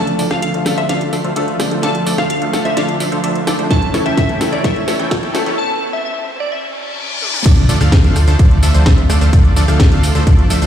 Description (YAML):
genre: EDM, festival progressive house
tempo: 128 BPM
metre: 4/4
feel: straight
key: D minor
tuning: A4 = 439 Hz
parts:
  - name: glassy wavetable pluck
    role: melody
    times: 0.0-7.4 s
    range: D5 to A5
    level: -23 LUFS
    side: left 1 dB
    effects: chorus, digital delay
  - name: clear concert grand piano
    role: accompaniment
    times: 0.0-7.5 s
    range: A3 to A4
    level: -23 LUFS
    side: left 4 dB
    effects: sidechain pumping
  - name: lush unison pad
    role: sustained chords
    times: 0.0-10.7 s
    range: C#3 to F4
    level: -23 LUFS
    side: right 2 dB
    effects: chorus, sidechain pumping
  - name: supersaw stab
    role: riff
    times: 0.0-10.7 s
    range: E3 to G5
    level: -20 LUFS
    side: equal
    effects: sidechain pumping, low-pass filter, digital delay
  - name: fat analog bass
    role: bass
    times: 0.0-10.7 s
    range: A1 to D2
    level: -18 LUFS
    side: equal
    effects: sidechain pumping, high-pass filter
  - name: riser, reverse cymbal and sub drop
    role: sound effects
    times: 0.0-9.3 s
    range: none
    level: -23 LUFS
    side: equal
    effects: none
  - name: house drum kit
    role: drums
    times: 0.1-10.7 s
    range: cabasa, crash cymbal, hi-hat, rim click, snare drum, toms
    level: -22 LUFS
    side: equal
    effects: none
  - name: electronic kick drum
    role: drums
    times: 3.7-10.4 s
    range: none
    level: -11 LUFS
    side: equal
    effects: none
room: light reverb, digital ambience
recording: played on a big sound system in a bare room, large studio reverb, high-pass filter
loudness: -12 LUFS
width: side -9 dB against mid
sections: 0.0-7.5 A section; 7.5-10.7 B section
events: build-up 0.0-7.5; drum fill 0.0-5.6, 7.2; riser 0.0-7.5; filter sweep on supersaw synth 0.0-7.5; filter sweep 0.0-7.5; break 5.6-7.5; reverse cymbal 6.5-7.5; drop 7.5-10.7; impact 7.5-9.3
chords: 0.0 Dm; 3.7 A; 7.5 Dm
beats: 0.42 0.89 1.36 | 1.83 2.30 2.77 3.24 | 3.71 4.17 4.64 5.11 | 5.58 6.05 6.52 6.99 | 7.46 7.92 8.39 8.86 | 9.33 9.80 10.27